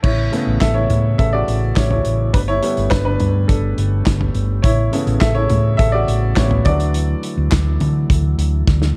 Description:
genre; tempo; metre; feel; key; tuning
piano-driven pop; 104 BPM; 4/4; straight; A mixolydian; A4 = 441 Hz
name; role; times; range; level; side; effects
warm upright piano; accompaniment; 0.0-9.0 s; C#3 to E5; -23 LUFS; equal; none
mellow tonewheel organ; sustained chords; 0.0-9.0 s; C#3 to G4; -30 LUFS; equal; slow rotary speaker
hollow-body short-scale fingered electric bass; bass; 0.0-8.9 s; G1 to D3; -20 LUFS; equal; none
loose indie drum kit; drums; 0.0-9.0 s; crash cymbal, handclaps, hi-hat, kick drum, snare drum, toms; -21 LUFS; equal; none
room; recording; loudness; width
small room ambience; dark, warm production; -17 LUFS; mono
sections
0.0-9.0 A section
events
upright piano solo 0.0-9.0; drum fill 8.7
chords
0.0 Aadd9; 2.3 Gadd9; 4.6 Aadd9; 6.7 Dadd9

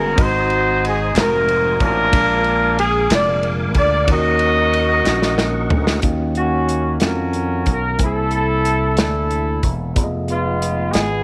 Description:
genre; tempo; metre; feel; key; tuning
slow gospel; 61 BPM (dotted quarters); 6/8; straight; Eb minor; A4 = 439 Hz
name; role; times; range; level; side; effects
dark horn section; melody; 0.0-11.2 s; Ab3 to Eb5; -20 LUFS; equal; none
mellow tine electric piano; accompaniment; 0.0-11.2 s; Ab2 to Ab5; -30 LUFS; equal; none
tonewheel organ; sustained chords; 0.0-6.0 s; Cb4 to Eb6; -30 LUFS; equal; slow rotary speaker, chorus vibrato
slap bass with an envelope filter; bass; 0.0-11.2 s; E1 to F2; -24 LUFS; equal; none
natural country drum kit; drums; 0.2-11.1 s; hi-hat, kick drum, ride cymbal, snare drum, toms; -23 LUFS; equal; none
group handclap; percussion; 1.2-5.4 s; none; -31 LUFS; equal; none
room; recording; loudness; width
light reverb, small room ambience; none; -17 LUFS; mono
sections
0.0-6.0 A section; 6.0-11.2 B section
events
drum fill 5.1-6.0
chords
0.2 Ab7; 2.1 Bb7; 4.1 Ebm7; 6.0 Ebm9; 8.0 C7b13; 10.0 Fm7b5

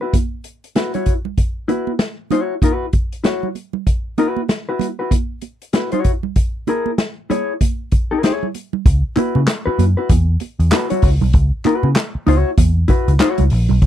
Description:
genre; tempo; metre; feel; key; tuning
funk; 96 BPM; 4/4; swing 60% on 16ths; C# dorian; A4 = 440 Hz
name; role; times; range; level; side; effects
mellow electric guitar; accompaniment; 0.0-13.4 s; E4 to C#5; -19 LUFS; left 4 dB; none
swinging big-band drum kit; drums; 0.1-13.9 s; handclaps, hi-hat, kick drum, snare drum; -17 LUFS; equal; none
congas; percussion; 0.1-13.9 s; none; -24 LUFS; right 16 dB; none
vintage muted picked electric bass; bass; 8.9-13.9 s; A#1 to C#3; -14 LUFS; equal; none
group handclap; percussion; 9.2-13.4 s; none; -28 LUFS; equal; none
room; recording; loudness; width
little or no reverb; dry, close 1970s-style studio recording; -15 LUFS; side -11 dB against mid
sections
0.0-8.9 A section; 8.9-13.9 B section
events
none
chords
0.0 C#m7; 6.4 E6; 8.9 C#m7

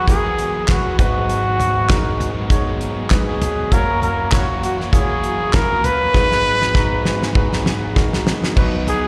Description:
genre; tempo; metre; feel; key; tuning
piano-driven pop; 99 BPM; 4/4; swing 56% on 16ths; unclear; A4 = 440 Hz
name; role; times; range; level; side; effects
breathy trumpet; melody; 0.0-9.1 s; F#4 to B4; -22 LUFS; equal; slapback echo, delay
warm concert grand piano; accompaniment; 0.0-9.1 s; F#1 to A#5; -25 LUFS; equal; slapback echo
warm studio string section; sustained chords; 0.0-9.1 s; A#2 to G#4; -35 LUFS; equal; none
crunchy overdriven guitar; riff; 0.0-9.1 s; G#2 to B4; -31 LUFS; equal; slapback echo
damped 70s drum kit; drums; 0.1-9.0 s; crash cymbal, handclaps, hi-hat, kick drum, snare drum, toms; -20 LUFS; equal; none
room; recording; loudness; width
small room ambience; live gig heard through the venue's PA, recital hall reverb; -18 LUFS; mono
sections
0.0-8.6 A section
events
drum fill 6.1-8.6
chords
0.0 Eadd9; 1.0 G#m7; 3.7 F#7; 6.1 G#m7; 8.6 B

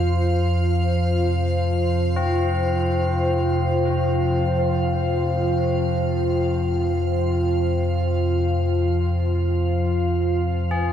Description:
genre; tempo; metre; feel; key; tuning
dark ambient drone; free time; none; none; unclear; A4 = 440 Hz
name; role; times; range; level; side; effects
sweeping resonant pad; sustained chords; 0.0-10.9 s; F3 to C5; -23 LUFS; right 1 dB; chorus
deep rumbling drone; drone; 0.0-10.9 s; F2 to C3; -22 LUFS; left 1 dB; built-in reverb, wide subtle chorus
icy glass pad; texture; 0.0-10.9 s; F5; -32 LUFS; left 2 dB; chorus, built-in reverb
tubular bells; arpeggios; 2.2-10.9 s; C4 to Ab4; -30 LUFS; left 4 dB; analog delay
room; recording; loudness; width
wet cathedral reverb, RT60 4.8 s; dreamy mix soaked in reverb; -19 LUFS; side -9 dB against mid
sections
0.0-10.9 A section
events
none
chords
0.0 F5

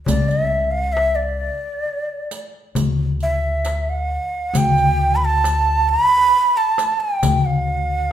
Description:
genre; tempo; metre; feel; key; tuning
Arabic maqam ensemble; 134 BPM (eighths); 10/8; straight; D maqam rast; A4 = 440 Hz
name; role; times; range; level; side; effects
breathy bright shakuhachi; melody; 0.1-8.1 s; D5 to B5; -18 LUFS; right 2 dB; none
upright bass; bass; 0.1-8.1 s; C2+50c to D2; -22 LUFS; left 1 dB; none
darbuka; percussion; 0.1-7.8 s; none; -22 LUFS; left 4 dB; none
riq; percussion; 0.1-7.4 s; none; -28 LUFS; right 3 dB; none
room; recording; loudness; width
wet recital hall reverb, RT60 1.3 s; minimal, uncompressed stereo recording; -16 LUFS; side -10 dB against mid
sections
0.0-8.1 A section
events
none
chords
none

